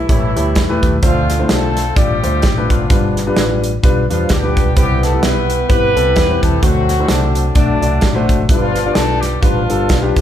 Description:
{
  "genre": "uptempo gospel",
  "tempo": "129 BPM",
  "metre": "4/4",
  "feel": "swing 57% on 8ths",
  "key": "unclear",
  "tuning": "A4 = 441 Hz",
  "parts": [
    { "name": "mellow horn section", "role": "melody", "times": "0.0-10.2 s", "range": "D3 to B4", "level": "-18 LUFS", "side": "equal", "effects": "none" },
    { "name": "hollow-body short-scale fingered electric bass", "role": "bass", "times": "0.0-10.2 s", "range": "G1 to E2", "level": "-19 LUFS", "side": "right 1 dB", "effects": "none" },
    { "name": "warm concert grand piano", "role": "accompaniment", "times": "0.1-10.2 s", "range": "G2 to D5", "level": "-19 LUFS", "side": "left 2 dB", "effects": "none" },
    { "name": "modern studio drum kit", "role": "drums", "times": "0.1-10.2 s", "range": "hi-hat, kick drum, snare drum", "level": "-16 LUFS", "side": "equal", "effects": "none" }
  ],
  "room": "moderate large studio reverb, RT60 1.1 s",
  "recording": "band playing live in one room",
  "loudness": "-12 LUFS",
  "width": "side -10 dB against mid",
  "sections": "0.0-10.2 A section",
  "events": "none",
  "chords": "0.0 A7; 1.0 Dm7; 2.9 G7; 4.8 Cmaj7; 6.6 D7; 8.5 G7",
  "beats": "0.10 0.56 | 1.03 1.50 1.97 2.43 | 2.90 3.37 3.83 4.30 | 4.77 5.23 5.70 6.17 | 6.63 7.10 7.56 8.03 | 8.50 8.96 9.43 9.89"
}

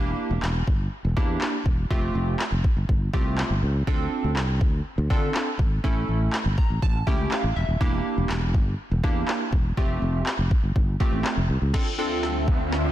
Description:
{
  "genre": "dance-pop",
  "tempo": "122 BPM",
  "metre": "4/4",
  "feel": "straight",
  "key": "D minor",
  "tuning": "A4 = 439 Hz",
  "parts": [
    { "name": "warm analog keys", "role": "accompaniment", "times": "0.0-12.5 s", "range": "A3 to Bb5", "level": "-29 LUFS", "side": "right 2 dB", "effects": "chorus" },
    { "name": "sustaining fretless electric bass", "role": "bass", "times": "0.0-11.7 s", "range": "Eb1 to D3", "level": "-25 LUFS", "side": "equal", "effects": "sidechain pumping" },
    { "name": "smooth R&B drum kit", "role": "drums", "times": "0.4-12.8 s", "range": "crash cymbal, handclaps, kick drum, snare drum", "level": "-24 LUFS", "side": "equal", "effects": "none" },
    { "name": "airy breathy pad", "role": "sustained chords", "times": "12.1-12.9 s", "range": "D2 to E5", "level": "-26 LUFS", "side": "equal", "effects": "chorus, sidechain pumping" },
    { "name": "riser", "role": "sound effects", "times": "12.1-12.9 s", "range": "none", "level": "-31 LUFS", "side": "right 1 dB", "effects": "none" }
  ],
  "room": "light reverb, digital ambience",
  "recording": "dense, heavily limited modern master",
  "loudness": "-22 LUFS",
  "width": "side -13 dB against mid",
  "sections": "0.0-11.7 A section; 11.7-12.9 B section",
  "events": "synth keys fill 6.3-7.8; build-up 11.7-12.9; drum fill 11.7-12.9; filter sweep 11.7-12.9; riser 12.1-12.9",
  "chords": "0.0 Em7b5; 1.9 Fadd9; 3.9 Dm7; 5.8 A; 7.8 Em7b5; 9.8 Fadd9; 11.7 Dm7",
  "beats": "0.43 0.92 1.41 | 1.91 2.40 2.89 3.38 | 3.87 4.36 4.86 5.35 | 5.84 6.33 6.82 7.32 | 7.81 8.30 8.79 9.28 | 9.77 10.27 10.76 11.25 | 11.74 12.23 12.72"
}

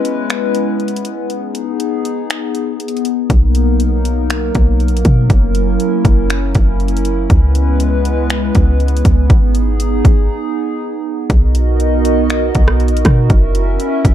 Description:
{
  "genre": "hip hop, atmospheric cloud-rap",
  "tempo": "120 BPM",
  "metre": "4/4",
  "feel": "half-time",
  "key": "B major",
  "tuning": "A4 = 439 Hz",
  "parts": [
    { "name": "hollow soft pad", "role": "sustained chords", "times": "0.0-14.1 s", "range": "F#3 to E5", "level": "-17 LUFS", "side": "equal", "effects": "chorus, sidechain pumping" },
    { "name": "trap drum kit", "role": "drums", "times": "0.0-14.1 s", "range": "finger snaps, hi-hat, kick drum, rim click", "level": "-14 LUFS", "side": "equal", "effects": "none" },
    { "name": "clean 808-style bass", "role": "bass", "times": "3.3-14.1 s", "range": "F#1 to B2", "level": "-14 LUFS", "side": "equal", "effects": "none" }
  ],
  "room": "digital ambience",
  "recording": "dark, warm production",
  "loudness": "-12 LUFS",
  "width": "side -11 dB against mid",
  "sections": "0.0-11.3 A section; 11.3-14.1 B section",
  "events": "break 0.0-3.3, 10.3-11.3",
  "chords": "0.0 C#m7; 1.3 G#m; 3.3 Bmaj7; 5.3 F#7; 7.3 C#m7; 9.3 G#m; 11.3 Bmaj7; 13.3 F#7",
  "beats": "0.30 0.80 | 1.30 1.80 2.30 2.80 | 3.30 3.80 4.30 4.80 | 5.30 5.80 6.30 6.80 | 7.30 7.80 8.30 8.80 | 9.30 9.80 10.30 10.80 | 11.30 11.80 12.30 12.80 | 13.30 13.80"
}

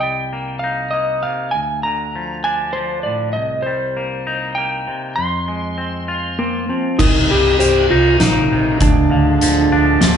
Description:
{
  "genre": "post-rock",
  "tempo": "99 BPM",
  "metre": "3/4",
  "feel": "straight",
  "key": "C minor",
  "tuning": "A4 = 442 Hz",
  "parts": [
    { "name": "electric slide guitar", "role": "melody", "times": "0.0-10.2 s", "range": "Bb3 to C6", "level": "-18 LUFS", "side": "equal", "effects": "none" },
    { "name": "twangy electric guitar", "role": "arpeggios", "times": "0.0-10.2 s", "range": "C2 to F4", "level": "-22 LUFS", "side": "left 2 dB", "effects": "none" },
    { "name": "pedal harmonium", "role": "sustained chords", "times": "7.0-10.2 s", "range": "C3 to F4", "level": "-27 LUFS", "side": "equal", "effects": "none" },
    { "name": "felt-muted upright piano", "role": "arpeggios", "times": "7.0-10.2 s", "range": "Bb4 to F5", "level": "-27 LUFS", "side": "right 3 dB", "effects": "none" },
    { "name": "hollow-body short-scale fingered electric bass", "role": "bass", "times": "7.0-10.2 s", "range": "C1 to D2", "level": "-19 LUFS", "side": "right 1 dB", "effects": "none" },
    { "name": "oversized low-tuned drum kit", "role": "drums", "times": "7.0-10.2 s", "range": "crash cymbal, hi-hat, kick drum, snare drum", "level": "-17 LUFS", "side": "right 1 dB", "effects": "none" }
  ],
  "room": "moderate large studio reverb, RT60 1.2 s",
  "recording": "band playing live in one room, nothing above 11.0 kHz",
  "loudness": "-15 LUFS",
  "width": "side -8 dB against mid",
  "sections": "0.0-7.0 A section; 7.0-10.2 B section",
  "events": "none",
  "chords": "0.0 Cm7; 1.5 Dm; 3.4 Cm7; 5.2 Fm; 7.0 Cm7; 8.8 Ddim",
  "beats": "0.33 0.93 | 1.54 2.15 2.75 | 3.36 3.97 4.57 | 5.18 5.79 6.39 | 7.00 7.60 8.21 | 8.81 9.41 10.02"
}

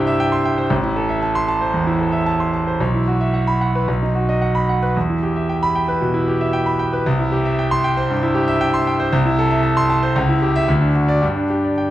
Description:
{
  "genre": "classical, virtuoso piano study",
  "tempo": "114 BPM",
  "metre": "4/4",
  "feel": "rubato",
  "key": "unclear",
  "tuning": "A4 = 440 Hz",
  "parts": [
    { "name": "bright concert grand piano", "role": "solo", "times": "0.0-11.9 s", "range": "A1 to C6", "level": "-16 LUFS", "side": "equal", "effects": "none" }
  ],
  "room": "moderate recital hall reverb, RT60 1.5 s",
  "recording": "dark, warm production, vinyl crackle",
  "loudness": "-16 LUFS",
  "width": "side -14 dB against mid",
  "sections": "0.0-11.9 A section",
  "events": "none",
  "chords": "0.0 C; 0.7 Am; 2.8 Bsus4; 3.9 B; 5.0 Em; 7.1 C; 9.1 Am/C; 10.2 C#dim; 10.7 D; 11.2 G5",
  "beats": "0.19 | 0.70 1.22 1.73 2.26 | 2.80 3.33 3.87 4.41 | 4.95 5.48 6.01 6.53 | 7.05 7.58 8.09 8.61 | 9.12 9.64 10.16 10.68 | 11.22 11.78"
}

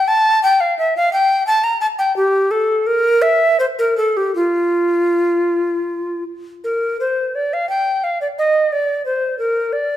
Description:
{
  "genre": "classical, baroque-style fantasia for unaccompanied recorder",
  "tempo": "51-60 BPM (dotted quarters)",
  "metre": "6/8",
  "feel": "rubato",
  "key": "F major",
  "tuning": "A4 = 436 Hz",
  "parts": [
    { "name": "mellow tenor recorder", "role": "solo", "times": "0.0-10.0 s", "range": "F4 to Bb5", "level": "-15 LUFS", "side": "equal", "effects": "none" }
  ],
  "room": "moderate recital hall reverb, RT60 1.4 s",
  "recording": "minimal, uncompressed stereo recording",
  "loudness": "-15 LUFS",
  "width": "side -12 dB against mid",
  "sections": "0.0-6.6 A section; 6.6-10.0 A section",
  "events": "none",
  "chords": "none",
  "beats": "| 0.08 1.11 | 2.14 3.22 | 4.35 5.50 | 6.65 7.70 | 8.71 9.72"
}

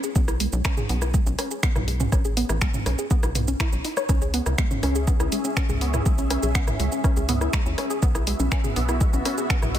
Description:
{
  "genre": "melodic techno",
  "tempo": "122 BPM",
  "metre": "4/4",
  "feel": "straight",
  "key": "C# minor",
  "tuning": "A4 = 440 Hz",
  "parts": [
    { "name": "analog pluck", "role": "arpeggios", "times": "0.0-9.8 s", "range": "G#3 to C#5", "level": "-28 LUFS", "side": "equal", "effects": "chorus, sidechain pumping, digital delay" },
    { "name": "deep house drum kit", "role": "drums", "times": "0.0-9.8 s", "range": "finger snaps, hi-hat, rim click, shaker, toms", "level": "-28 LUFS", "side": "right 1 dB", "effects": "overdrive, soft clipping on snare" },
    { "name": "tight sequencer bass", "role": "bass", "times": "0.2-9.8 s", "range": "A1 to D#2", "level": "-26 LUFS", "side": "equal", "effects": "sidechain pumping" },
    { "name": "electronic kick drum", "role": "drums", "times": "0.2-9.6 s", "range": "none", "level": "-22 LUFS", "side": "equal", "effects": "overdrive" },
    { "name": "lush unison pad", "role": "sustained chords", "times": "4.1-9.8 s", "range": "B3 to E5", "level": "-31 LUFS", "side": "left 1 dB", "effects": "chorus, phaser, sidechain pumping" }
  ],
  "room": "light reverb, digital ambience",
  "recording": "dense, heavily limited modern master",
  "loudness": "-21 LUFS",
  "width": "side -11 dB against mid",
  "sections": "0.0-9.8 A section",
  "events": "filter sweep on synth arpeggio sound 0.0-9.8",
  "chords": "0.2 N.C.; 4.1 C#m; 8.0 Bsus4",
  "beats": "| 0.16 0.65 1.14 1.63 | 2.12 2.62 3.11 3.60 | 4.09 4.58 5.08 5.57 | 6.06 6.55 7.04 7.53 | 8.03 8.52 9.01 9.50"
}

